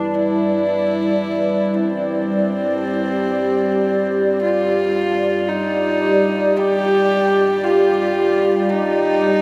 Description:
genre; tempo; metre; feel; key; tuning
dark ambient drone; free time; none; none; unclear; A4 = 440 Hz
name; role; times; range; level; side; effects
warm horsehead fiddle; melody; 0.0-9.4 s; C4 to G4; -23 LUFS; equal; tape echo
dark analog pad; sustained chords; 0.0-9.4 s; G3 to D5; -20 LUFS; equal; chorus, phaser
room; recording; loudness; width
wet huge ambient reverb, RT60 8.2 s; none; -18 LUFS; mono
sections
0.0-9.4 A section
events
none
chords
0.0 Em; 2.2 Cmadd9

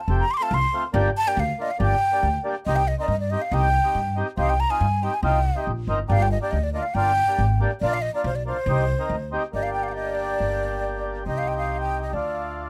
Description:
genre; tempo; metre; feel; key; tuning
klezmer; 140 BPM; 2/4; straight; C minor, G minor from 9.5 s; A4 = 440 Hz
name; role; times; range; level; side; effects
breathy concert flute; melody; 0.0-12.7 s; C5 to D6; -27 LUFS; equal; none
mellow accordion; accompaniment; 0.1-12.7 s; A3 to Bb4; -30 LUFS; equal; none
upright bass; bass; 0.1-12.7 s; F1 to G2; -27 LUFS; equal; none
room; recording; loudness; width
little or no reverb; close, detailed microphones; -23 LUFS; mono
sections
0.0-2.7 A section; 2.7-9.5 B section; 9.5-12.7 C section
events
none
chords
0.0 F; 0.9 Gm; 2.7 Cm; 6.1 Gm; 7.8 Bb; 8.7 Cm; 9.5 Gm; 11.3 Cm; 12.1 Dm

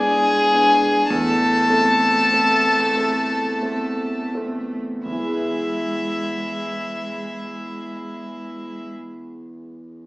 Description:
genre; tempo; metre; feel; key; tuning
classical, slow romantic movement for piano quartet; 39-53 BPM; 3/4; rubato; E major; A4 = 440 Hz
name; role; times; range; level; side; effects
warm violin; melody; 0.0-8.9 s; E5 to A5; -21 LUFS; left 1 dB; none
rich cello; second line; 0.0-8.9 s; G#3 to A3; -31 LUFS; right 1 dB; none
rich violin; second line; 0.0-8.9 s; E4 to A4; -24 LUFS; equal; none
dark baby grand piano; accompaniment; 0.0-10.1 s; E2 to B4; -24 LUFS; right 1 dB; none
room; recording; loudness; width
wet recital hall reverb, RT60 1.2 s; recorded in a church or concert hall, small speaker sound; -17 LUFS; side -21 dB against mid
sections
0.0-5.1 A section; 5.1-9.2 B section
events
slowing down 0.0-5.1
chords
0.0 E7; 1.1 Am/E; 5.1 E

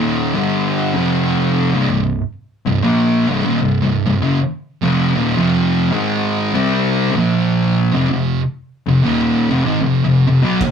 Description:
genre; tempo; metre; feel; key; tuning
stoner and doom metal; 77 BPM; 4/4; swing 58% on 8ths; unclear; A4 = 440 Hz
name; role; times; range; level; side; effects
fuzz guitar; riff; 0.0-10.6 s; C2 to C4; -16 LUFS; left 2 dB; distortion
thick fuzz guitar; riff; 0.0-10.6 s; C2 to C4; -17 LUFS; right 3 dB; distortion
big rock drum kit; drums; 10.6-10.7 s; kick drum, ride cymbal; -18 LUFS; right 2 dB; none
room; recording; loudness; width
light reverb; rough rehearsal-room recording; -14 LUFS; side -7 dB against mid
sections
0.0-10.7 A section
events
none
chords
0.0 Cm (rootless); 0.9 F5; 1.7 C5; 4.8 F5; 7.1 Bb5; 7.9 F5

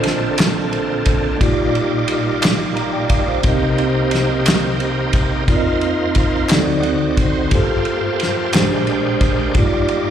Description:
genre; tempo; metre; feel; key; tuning
slow gospel; 59 BPM (dotted quarters); 6/8; straight; Bb major; A4 = 439 Hz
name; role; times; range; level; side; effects
mellow tine electric piano; accompaniment; 0.0-10.1 s; Bb1 to Bb5; -19 LUFS; equal; medium stereo tremolo, slapback echo
bright tonewheel organ; sustained chords; 0.0-10.1 s; Bb2 to G5; -20 LUFS; right 2 dB; slow rotary speaker, chorus vibrato
warm soul drum kit; drums; 0.0-10.0 s; kick drum, ride cymbal, snare drum; -19 LUFS; equal; none
group handclap; percussion; 0.4-8.9 s; none; -26 LUFS; left 3 dB; none
room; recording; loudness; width
light reverb, small room ambience; live gig heard through the venue's PA, club reverb; -15 LUFS; side -9 dB against mid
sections
0.0-10.1 A section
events
tine electric piano fill 2.4-3.4; tonewheel organ fill 6.5-7.5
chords
0.0 Bbmaj9; 1.4 Ebmaj9/Bb; 3.4 Cm7; 5.5 F7sus4; 6.5 D7b9; 7.5 Gm11; 8.5 Bb13; 9.6 Ebmaj9/G

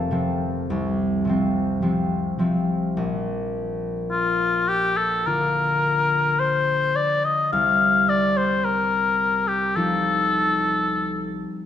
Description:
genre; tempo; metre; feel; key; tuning
classical, romantic duo for oboe and harp; 53 BPM; 4/4; rubato; Bb major; A4 = 440 Hz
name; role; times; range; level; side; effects
concert harp; accompaniment; 0.0-11.7 s; F1 to Bb5; -24 LUFS; equal; none
clear oboe; melody; 4.1-11.4 s; F4 to F5; -20 LUFS; left 3 dB; none
room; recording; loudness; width
wet scoring stage reverb, RT60 1.5 s; none; -20 LUFS; side -10 dB against mid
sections
0.0-3.0 A section; 3.0-11.7 B section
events
none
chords
0.0 F; 3.0 Bb; 7.5 F7/C

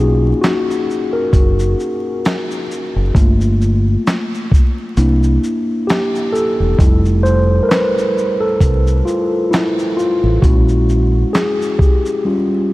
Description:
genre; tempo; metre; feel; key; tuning
lo-fi hip hop; 66 BPM; 4/4; swing 58% on 16ths; unclear; A4 = 440 Hz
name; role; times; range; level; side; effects
mellow tine electric piano; accompaniment; 0.0-12.7 s; G3 to C5; -16 LUFS; left 1 dB; cassette tape
deep dub fingered electric bass; bass; 0.0-11.2 s; E1 to C2; -14 LUFS; equal; none
dusty soul sampler-style drum kit; drums; 0.4-12.2 s; handclaps, hi-hat, kick drum, shaker, snare drum; -16 LUFS; equal; none
room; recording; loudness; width
light reverb; vinyl crackle; -12 LUFS; side -18 dB against mid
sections
0.0-12.7 A section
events
tine electric piano solo 0.0-12.7; break 12.2-12.7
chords
0.0 Bmaj9#11 (rootless); 3.2 Gm9; 5.0 C9; 6.8 Fmaj7; 10.4 A#m7b5

